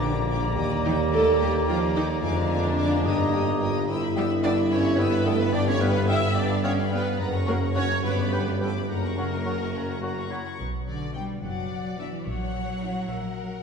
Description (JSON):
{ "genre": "cinematic, playful, whimsical film cue", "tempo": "72 BPM (dotted quarters)", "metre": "6/8", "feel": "straight", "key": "B minor from 3.9 s", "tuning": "A4 = 441 Hz", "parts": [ { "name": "rich studio violin section", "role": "melody", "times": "0.0-13.6 s", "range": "D5 to E6", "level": "-38 LUFS", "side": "left 4 dB", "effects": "none" }, { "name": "bright clarinet", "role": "second line", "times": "0.0-10.6 s", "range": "Bb3 to F#4", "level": "-36 LUFS", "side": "equal", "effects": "none" }, { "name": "hollow concert flute", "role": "second line", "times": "0.0-10.4 s", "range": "G5 to C#6", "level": "-36 LUFS", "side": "left 1 dB", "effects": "none" }, { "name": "mellow cor anglais", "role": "second line", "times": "0.0-10.4 s", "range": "D5 to G5", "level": "-38 LUFS", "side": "right 2 dB", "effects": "none" }, { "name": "rich studio violin section", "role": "second line", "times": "0.0-13.6 s", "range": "Bb4 to D6", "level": "-38 LUFS", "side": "left 3 dB", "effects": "none" }, { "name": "dark bassoon", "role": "accompaniment", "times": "0.0-10.4 s", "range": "F#3 to B3", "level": "-36 LUFS", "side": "right 1 dB", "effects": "none" }, { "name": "rich studio viola section", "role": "accompaniment", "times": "0.0-13.0 s", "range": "B3 to E5", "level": "-29 LUFS", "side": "right 1 dB", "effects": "none" }, { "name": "dark French horn section", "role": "sustained chords", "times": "0.0-13.6 s", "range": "D3 to G4", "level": "-32 LUFS", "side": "left 2 dB", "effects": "none" }, { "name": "concert harp", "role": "arpeggios", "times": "0.0-13.6 s", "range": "F2 to F#5", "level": "-32 LUFS", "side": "left 6 dB", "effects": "none" }, { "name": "clear tuba", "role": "bass", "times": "0.0-10.4 s", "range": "F1 to Eb2", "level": "-31 LUFS", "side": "right 2 dB", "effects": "none" }, { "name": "rich studio cello section", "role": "bass", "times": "0.0-13.6 s", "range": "D3 to E4", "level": "-32 LUFS", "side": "right 2 dB", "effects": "none" }, { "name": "warm studio double bass section", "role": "bass", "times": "0.0-13.6 s", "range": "F#1 to G2", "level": "-29 LUFS", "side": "right 2 dB", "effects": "none" } ], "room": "wet scoring stage reverb, RT60 1.9 s", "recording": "heard from further back in the room", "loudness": "-22 LUFS", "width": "side -6 dB against mid", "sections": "0.0-10.6 A section; 10.6-13.6 B section", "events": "none", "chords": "0.0 Gm/Bb; 0.6 Ebmaj7; 2.2 Bb7/F; 3.1 Eb/G; 3.9 Em/G; 5.5 G7; 7.2 F#; 8.0 G; 8.9 F#; 10.6 Bm; 12.3 F#7/A#", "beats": "| 0.58 1.40 | 2.23 3.05 | 3.88 4.71 | 5.53 6.36 | 7.20 8.04 | 8.89 9.74 | 10.59 11.43 | 12.26 13.08" }